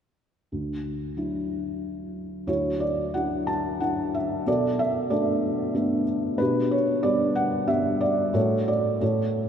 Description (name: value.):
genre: classical, lyrical solo piano.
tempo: 92 BPM.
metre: 3/4.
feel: rubato.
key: D major.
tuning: A4 = 440 Hz.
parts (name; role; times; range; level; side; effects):
felt-muted upright piano; solo; 0.5-9.5 s; D2 to A5; -23 LUFS; equal; none.
room: wet cathedral reverb, RT60 5.3 s.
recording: in a vast, echoing space.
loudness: -23 LUFS.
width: side -8 dB against mid.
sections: 0.5-2.5 A section; 2.5-9.5 B section.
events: none.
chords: 0.5 Dadd9; 4.5 Bm7; 6.4 G/B; 8.3 D/A.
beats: | 0.52 1.18 1.82 | 2.48 3.15 3.82 | 4.47 5.12 5.75 | 6.40 7.04 7.68 | 8.34 9.02.